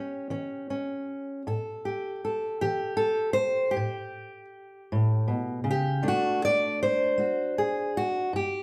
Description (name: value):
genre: acoustic country blues, solo or duo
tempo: 52 BPM (dotted quarters)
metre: 12/8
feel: straight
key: unclear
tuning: A4 = 439 Hz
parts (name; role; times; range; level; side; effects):
- fingerpicked steel-string acoustic guitar; solo; 0.0-8.6 s; G2 to D5; -28 LUFS; equal; none
room: wet large studio reverb, RT60 1.1 s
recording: band playing live in one room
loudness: -28 LUFS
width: mono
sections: 0.0-8.6 A section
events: none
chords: 0.0 A7; 6.0 D7